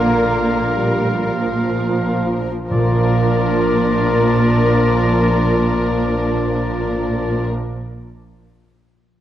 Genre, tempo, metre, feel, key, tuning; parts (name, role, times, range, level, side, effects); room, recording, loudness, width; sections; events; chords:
cinematic; 47 BPM; 4/4; rubato; Bb major; A4 = 441 Hz
muted symphonic violin section; melody; 0.0-7.5 s; Bb4; -27 LUFS; left 2 dB
bright concert flute; second line; 0.0-7.5 s; Bb4 to D5; -25 LUFS; left 3 dB
bright oboe; second line; 0.0-7.5 s; D5 to F5; -26 LUFS; equal
muted symphonic violin section; second line; 0.0-7.5 s; D4 to Bb4; -27 LUFS; left 3 dB
warm clarinet; second line; 0.0-7.5 s; F4; -25 LUFS; right 2 dB
muted symphonic viola section; accompaniment; 0.0-7.5 s; F3 to Bb3; -24 LUFS; right 1 dB
warm French horn section; sustained chords; 0.0-7.5 s; D3 to Bb3; -23 LUFS; left 2 dB
concert harp; arpeggios; 0.0-7.8 s; Bb2 to F5; -26 LUFS; left 2 dB
muted symphonic cello section; bass; 0.0-7.5 s; Bb2; -23 LUFS; right 2 dB
muted symphonic double bass section; bass; 0.0-7.5 s; Bb1; -23 LUFS; right 3 dB
timpani; percussion; 2.7-7.5 s; Bb2; -24 LUFS; right 1 dB
wet scoring stage reverb, RT60 1.7 s; worn, warbling old tape, cassette tape, warbly pitch drift; -15 LUFS; side -11 dB against mid
0.0-2.7 A section; 2.7-7.8 B section
slowing down 0.0-2.7
0.0 Bb